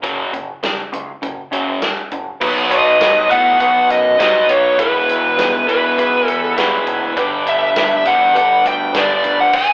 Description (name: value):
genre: classic rock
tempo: 101 BPM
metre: 4/4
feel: straight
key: unclear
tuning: A4 = 440 Hz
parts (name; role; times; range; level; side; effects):
- crunchy overdriven guitar; riff; 0.0-9.5 s; E2 to B3; -20 LUFS; equal; none
- growling picked electric bass; bass; 0.0-9.5 s; E1 to A2; -26 LUFS; equal; overdrive
- vintage drum kit; drums; 0.0-9.7 s; crash cymbal, hi-hat, kick drum, snare drum, tambourine; -22 LUFS; equal; none
- clear upright piano; accompaniment; 2.4-9.4 s; D4 to B4; -25 LUFS; right 1 dB; none
- bright tonewheel organ; sustained chords; 2.4-9.5 s; B3 to B4; -24 LUFS; equal; slow rotary speaker, overdrive
- smooth overdriven lead guitar; melody; 2.7-9.7 s; B4 to G#5; -13 LUFS; equal; none
room: moderate large studio reverb, RT60 0.9 s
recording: band playing live in one room, telephone sound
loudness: -12 LUFS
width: side -27 dB against mid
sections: 0.0-2.4 A section; 2.4-9.7 B section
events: none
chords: 0.0 F#5; 2.4 B; 4.8 E; 7.2 G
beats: | 0.03 0.63 1.22 1.82 | 2.41 3.01 3.60 4.20 | 4.79 5.38 5.98 6.57 | 7.17 7.76 8.35 8.94 | 9.54